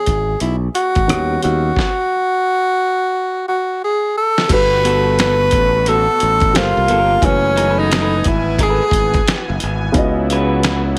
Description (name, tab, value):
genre	R&B, neo-soul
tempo	88 BPM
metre	4/4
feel	swing 60% on 16ths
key	unclear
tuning	A4 = 441 Hz
part	breathy tenor saxophone	melody	0.0-9.6 s	C#4 to B4	-18 LUFS	equal	none
part	dark upright piano	accompaniment	0.0-11.0 s	C#3 to G#5	-25 LUFS	equal	none
part	modern bright fingered electric bass	bass	0.1-11.0 s	F#1 to D#2	-22 LUFS	equal	none
part	dusty soul sampler-style drum kit	drums	0.1-10.8 s	crash cymbal, finger snaps, hi-hat, kick drum, rim click, snare drum	-21 LUFS	equal	none
part	pipe organ, strings celeste	sustained chords	4.5-11.0 s	B2 to G#5	-29 LUFS	equal	none
part	electric guitar through a small old amp	second line	4.8-10.8 s	B3 to B4	-26 LUFS	equal	spring reverb
room	digital ambience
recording	none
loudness	-16 LUFS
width	mono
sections	0.0-4.5 A section; 4.5-11.0 B section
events	drum fill 3.1-4.5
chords	0.0 Emaj7; 1.1 D#7alt; 1.8 N.C.; 4.5 Gmaj9; 6.5 Gm11; 7.2 F#m11; 9.9 C#m11